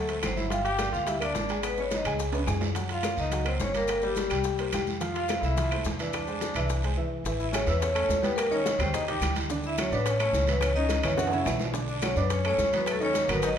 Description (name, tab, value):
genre	Afro-Cuban jazz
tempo	214 BPM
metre	4/4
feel	straight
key	A major from 7.3 s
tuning	A4 = 439 Hz
part	vibraphone with medium mallets	melody	0.0-13.5 s	G4 to G5	-29 LUFS	left 1 dB	none
part	brilliant trombone	second line	0.0-13.5 s	G3 to G4	-36 LUFS	left 4 dB	none
part	warm baby grand piano	accompaniment	0.0-13.5 s	C#3 to E6	-33 LUFS	right 2 dB	none
part	upright bass	bass	0.0-13.6 s	G1 to Gb2	-31 LUFS	equal	none
part	bongos	percussion	0.1-13.6 s	none	-39 LUFS	left 6 dB	none
part	congas	percussion	0.1-13.6 s	none	-37 LUFS	equal	none
part	maracas	percussion	0.1-13.6 s	none	-43 LUFS	left 6 dB	none
part	timbales	percussion	0.1-13.6 s	none	-37 LUFS	right 4 dB	none
part	claves	percussion	0.2-13.4 s	none	-41 LUFS	left 5 dB	none
part	guiro	percussion	0.2-13.6 s	none	-40 LUFS	right 4 dB	none
room	wet large studio reverb, RT60 1.3 s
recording	band playing live in one room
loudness	-25 LUFS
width	side -8 dB against mid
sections	0.0-7.3 A section; 7.3-13.6 B section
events	drum fill 2.3-2.8, 11.2-11.7; break 7.0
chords	0.0 D7; 0.5 Gm; 1.6 Abm; 2.2 Db5; 2.8 Gbmaj7; 3.9 Gm; 4.4 C5; 5.0 Fmaj7; 6.1 Eaug7; 7.3 Amaj7; 8.4 D#7; 9.5 Dmaj7; 10.6 C#madd9; 11.2 F#5; 11.7 Bm9; 12.9 G#m11